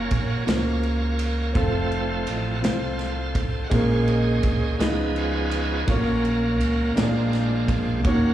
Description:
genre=slow gospel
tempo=56 BPM (dotted quarters)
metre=6/8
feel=straight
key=unclear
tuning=A4 = 440 Hz
part: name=warm concert grand piano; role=accompaniment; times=0.0-8.3 s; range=Bb2 to D5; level=-25 LUFS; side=left 1 dB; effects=slapback echo
part: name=bright tonewheel organ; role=sustained chords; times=0.0-8.3 s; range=Db3 to Gb5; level=-28 LUFS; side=right 4 dB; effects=slow rotary speaker, overdrive
part: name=upright bass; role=bass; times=0.0-8.3 s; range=F1 to Eb2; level=-26 LUFS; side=right 1 dB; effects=none
part: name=modern studio drum kit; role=drums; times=0.1-8.2 s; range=kick drum, ride cymbal, snare drum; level=-28 LUFS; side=right 1 dB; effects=none
room=light reverb, small room ambience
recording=live gig heard through the venue's PA, club reverb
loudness=-20 LUFS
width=side -12 dB against mid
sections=0.0-8.3 A section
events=tonewheel organ solo 0.0-8.3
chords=0.0 Gbmaj7; 1.6 F; 3.7 Bbm7; 4.8 Db9; 5.9 Gbmaj7/Bb; 7.0 Bb7

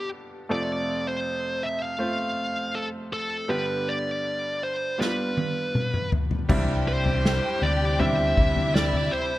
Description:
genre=pop ballad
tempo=80 BPM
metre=4/4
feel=straight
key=C major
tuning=A4 = 439 Hz
part: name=high-gain lead guitar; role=melody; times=0.0-9.4 s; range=A4 to F5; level=-27 LUFS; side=equal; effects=distortion
part: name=bright upright piano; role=accompaniment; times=0.0-9.4 s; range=F2 to C5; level=-30 LUFS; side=right 1 dB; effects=none
part: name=unplugged drum kit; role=drums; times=5.0-9.1 s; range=crash cymbal, kick drum, snare drum, toms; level=-26 LUFS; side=left 1 dB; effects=none
part: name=warm studio violin section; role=second line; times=6.5-9.4 s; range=E4 to G5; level=-33 LUFS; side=left 1 dB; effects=none
part: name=warm studio string section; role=sustained chords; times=6.5-9.4 s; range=C3 to G4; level=-33 LUFS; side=left 1 dB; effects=none
part: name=fretless electric bass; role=bass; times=6.5-9.1 s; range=C2 to D2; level=-26 LUFS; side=equal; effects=none
room=light reverb, studio reverb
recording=none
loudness=-23 LUFS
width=side -16 dB against mid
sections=0.0-6.5 A section; 6.5-9.4 B section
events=drum fill 5.0-6.5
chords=0.5 F; 3.5 G; 6.5 Cadd9

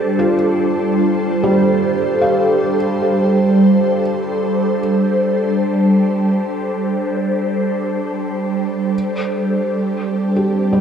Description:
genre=ambient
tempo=free time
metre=none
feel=none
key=unclear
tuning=A4 = 437 Hz
part: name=ethereal airy pad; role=sustained chords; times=0.0-10.8 s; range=G3 to C5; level=-15 LUFS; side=equal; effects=ensemble chorus, built-in reverb, phaser
part: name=felt-muted upright piano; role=arpeggios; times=0.0-10.8 s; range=G3 to F5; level=-20 LUFS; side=right 1 dB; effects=analog delay
room=wet spring reverb, RT60 2.3 s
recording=echo-heavy mix, cassette tape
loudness=-14 LUFS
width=side -8 dB against mid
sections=0.0-10.8 A section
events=none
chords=0.0 G7sus4; 8.9 Csus2/G

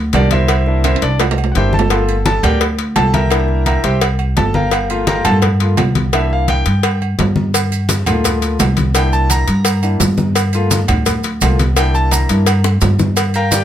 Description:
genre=latin, salsa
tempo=170 BPM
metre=4/4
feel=straight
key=unclear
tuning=A4 = 440 Hz
part: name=upright bass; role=bass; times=0.0-13.6 s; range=G1 to G2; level=-15 LUFS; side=equal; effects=none
part: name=congas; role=percussion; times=0.1-13.6 s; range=none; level=-21 LUFS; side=left 2 dB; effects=none
part: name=cowbell and bongos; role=percussion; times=0.1-13.6 s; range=none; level=-21 LUFS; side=left 7 dB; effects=none
part: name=timbales and agogo bells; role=percussion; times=0.1-13.6 s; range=none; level=-22 LUFS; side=right 8 dB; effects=none
part: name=clear concert grand piano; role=accompaniment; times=0.2-13.6 s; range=A3 to Bb5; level=-18 LUFS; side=left 1 dB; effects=none
part: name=maracas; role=percussion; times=7.5-13.6 s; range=none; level=-22 LUFS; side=right 5 dB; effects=none
room=light reverb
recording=none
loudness=-12 LUFS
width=side -10 dB against mid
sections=0.0-13.6 A section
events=grand piano solo 0.0-13.6; drum fill 0.8-1.9, 12.6-13.2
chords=0.5 C7; 1.9 Gm7; 6.1 C7; 7.5 Gm7; 8.9 C7; 10.4 Gm7; 11.8 C7

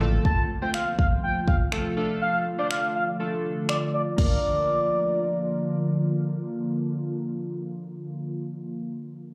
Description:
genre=dance-pop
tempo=122 BPM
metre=4/4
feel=straight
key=Bb major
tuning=A4 = 439 Hz
part: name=chorused retro synth keys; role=accompaniment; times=0.0-8.5 s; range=A3 to C5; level=-36 LUFS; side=equal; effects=sidechain pumping, low-pass filter, plate reverb, slapback echo
part: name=ethereal airy pad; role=sustained chords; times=0.0-8.5 s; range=C3 to F4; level=-32 LUFS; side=equal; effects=ensemble chorus, built-in reverb, sidechain pumping, low-pass filter
part: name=expressive synth lead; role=melody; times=0.2-5.6 s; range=D5 to A5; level=-29 LUFS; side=equal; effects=chorus, sidechain pumping, low-pass filter, plate reverb, slapback echo, tape echo
part: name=deep house drum kit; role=drums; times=0.2-4.3 s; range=crash cymbal, finger snaps, kick drum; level=-26 LUFS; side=equal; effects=none
room=moderate club reverb, RT60 0.6 s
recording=live gig heard through the venue's PA, club reverb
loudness=-26 LUFS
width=mono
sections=0.0-4.2 A section; 4.2-8.1 B section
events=filter sweep 0.0-4.2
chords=0.0 F/A; 2.0 Dm; 4.2 Bb

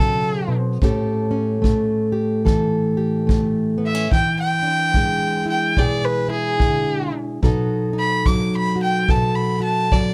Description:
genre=acoustic country blues, solo or duo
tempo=72 BPM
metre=4/4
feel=swing 60% on 8ths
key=unclear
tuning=A4 = 438 Hz
part: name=warm fiddle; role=melody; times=0.0-10.1 s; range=G#4 to D6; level=-24 LUFS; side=equal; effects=none
part: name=fingerpicked plugged-in steel-string acoustic guitar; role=accompaniment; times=0.0-10.1 s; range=A2 to A4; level=-22 LUFS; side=equal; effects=none
part: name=kick drum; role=drums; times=0.8-10.1 s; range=none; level=-22 LUFS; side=equal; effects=none
room=little or no reverb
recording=none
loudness=-20 LUFS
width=mono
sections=0.0-10.1 A section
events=none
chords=0.0 B7; 0.8 A7; 4.1 E7; 7.4 B7

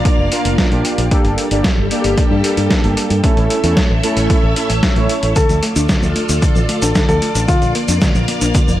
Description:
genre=italo disco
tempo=113 BPM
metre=4/4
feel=straight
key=D harmonic minor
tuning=A4 = 445 Hz
part: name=string machine, full ensemble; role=sustained chords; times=0.0-8.8 s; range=G3 to F5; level=-22 LUFS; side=left 1 dB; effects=ensemble chorus
part: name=analog synth brass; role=stabs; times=0.0-5.3 s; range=A3 to D5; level=-19 LUFS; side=right 1 dB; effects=chorus, analog delay
part: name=dusty soul sampler-style drum kit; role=drums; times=0.1-8.8 s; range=cabasa, hi-hat, snare drum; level=-20 LUFS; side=equal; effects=overdrive
part: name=electronic kick drum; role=drums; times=0.1-8.7 s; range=none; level=-16 LUFS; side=equal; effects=none
part: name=fingered electric bass with an envelope filter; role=bass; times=0.2-8.8 s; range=F1 to G2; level=-18 LUFS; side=equal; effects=none
part: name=dark baby grand piano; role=melody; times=5.4-7.7 s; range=F4 to A4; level=-20 LUFS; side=left 2 dB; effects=analog delay
part: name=warbly dusty pluck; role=arpeggios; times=5.4-8.8 s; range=D3 to D4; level=-20 LUFS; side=left 1 dB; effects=chorus, analog delay
room=light reverb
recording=dry, gritty hardware recording, vinyl crackle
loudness=-12 LUFS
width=side -14 dB against mid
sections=0.0-8.8 A section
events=none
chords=0.0 Bb; 1.1 Gmadd9; 3.2 A; 5.4 Dm; 7.5 Bb

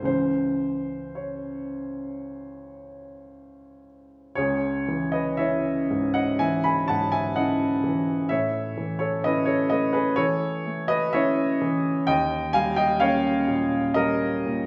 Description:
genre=classical, romantic nocturne for solo piano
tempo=54-65 BPM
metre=4/4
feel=rubato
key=C# minor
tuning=A4 = 440 Hz
part: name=warm upright piano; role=solo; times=0.0-14.7 s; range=C#2 to B5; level=-25 LUFS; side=equal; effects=none
room=wet recital hall reverb, RT60 1.4 s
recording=recorded in a church or concert hall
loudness=-24 LUFS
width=mono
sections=0.0-4.4 A section; 4.4-14.7 B section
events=none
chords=0.1 C#m; 8.3 A; 12.1 D#7

